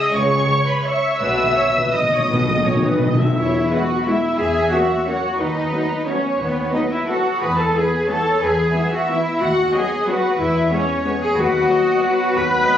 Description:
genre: classical.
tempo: 157-201 BPM.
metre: 3/4.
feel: rubato.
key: E major.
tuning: A4 = 441 Hz.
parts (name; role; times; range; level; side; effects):
muted studio violin section; melody; 0.0-12.8 s; B4 to E6; -26 LUFS; equal; none.
muted studio violin section; second line; 0.0-12.8 s; G#4 to F#5; -24 LUFS; equal; none.
muted studio viola section; accompaniment; 0.0-12.8 s; E3 to E5; -26 LUFS; equal; none.
muted studio cello section; bass; 0.1-12.8 s; B2 to B4; -20 LUFS; left 1 dB; none.
muted studio double bass section; bass; 0.1-12.6 s; B1 to E2; -26 LUFS; equal; none.
timpani; percussion; 1.2-3.3 s; B2; -21 LUFS; left 1 dB; none.
dark French horn section; sustained chords; 3.7-12.8 s; E3 to B3; -26 LUFS; left 2 dB; none.
room: wet stone room reverb, RT60 1.0 s.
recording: recorded on a phone in the room, club reverb, compression, nothing above 7.8 kHz.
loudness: -16 LUFS.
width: side -10 dB against mid.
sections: 0.0-3.4 A section; 3.4-12.8 B section.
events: timpani fill 1.2-3.4.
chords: 0.0 C#m; 1.2 B; 3.4 E; 4.4 F#7/E; 5.4 B7/D#; 7.4 E; 9.4 B/D#; 10.4 E; 11.4 B/D#.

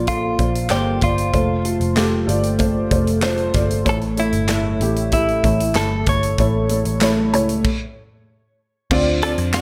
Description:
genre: piano-driven pop.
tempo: 95 BPM.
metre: 4/4.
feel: straight.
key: unclear.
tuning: A4 = 440 Hz.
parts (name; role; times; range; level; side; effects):
direct-recorded clean electric guitar; melody; 0.0-9.6 s; E4 to C#5; -25 LUFS; equal; subtle chorus.
felt-muted upright piano; accompaniment; 0.0-9.6 s; A2 to E5; -22 LUFS; equal; analog chorus.
vintage muted picked electric bass; bass; 0.0-9.6 s; F1 to F2; -24 LUFS; equal; none.
modern studio drum kit; drums; 0.1-9.6 s; crash cymbal, handclaps, hi-hat, kick drum, snare drum; -25 LUFS; equal; none.
room: light reverb, small room ambience.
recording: none.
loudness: -19 LUFS.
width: mono.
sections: 0.0-8.9 A section.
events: stop 7.6-8.9.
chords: 0.0 Bb; 1.3 F; 3.9 A; 8.9 Dm7.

